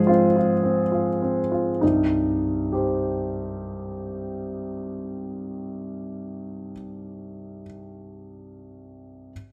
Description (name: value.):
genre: neoclassical minimalist piano.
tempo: 68 BPM.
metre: 3/4.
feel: rubato.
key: C minor.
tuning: A4 = 440 Hz.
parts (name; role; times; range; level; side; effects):
clear concert grand piano; solo; 0.0-9.3 s; C2 to C5; -26 LUFS; equal; none.
room: moderate stone room reverb, RT60 1.3 s.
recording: none.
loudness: -25 LUFS.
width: mono.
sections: 0.0-1.8 A section; 1.8-7.1 B section.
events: slowing down 0.0-1.8.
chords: 0.0 Fm/Ab; 1.8 Cm.